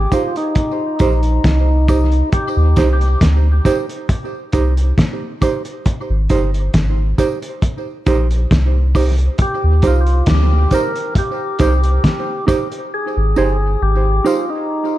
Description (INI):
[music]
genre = dub reggae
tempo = 68 BPM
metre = 4/4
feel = straight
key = Eb major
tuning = A4 = 440 Hz
[part]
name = percussive tonewheel organ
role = melody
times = 0.0-2.8, 9.4-15.0 s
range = Eb4 to Bb4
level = -21 LUFS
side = left 1 dB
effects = slow rotary speaker, tape echo
[part]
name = soft dub sub bass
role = bass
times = 0.0-14.2 s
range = G1 to Eb2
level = -14 LUFS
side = equal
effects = none
[part]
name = mellow electric guitar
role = accompaniment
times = 0.1-14.5 s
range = Eb4 to C5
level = -21 LUFS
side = right 4 dB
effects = tremolo, tape echo
[part]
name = cloth-damped thuddy drum kit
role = drums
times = 0.1-12.9 s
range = hi-hat, kick drum, snare drum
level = -17 LUFS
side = equal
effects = none
[part]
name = tambourine and woodblock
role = percussion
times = 0.1-14.5 s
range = none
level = -36 LUFS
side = right 2 dB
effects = tape echo
[sound]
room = light reverb, small room ambience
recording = echo-heavy mix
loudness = -13 LUFS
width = side -15 dB against mid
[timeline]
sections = 0.0-15.0 A section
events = part muted 12.9-15.0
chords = 0.0 Abmaj7 (rootless); 2.3 Eb6; 5.9 Abmaj7; 9.4 Eb6; 12.9 Abmaj7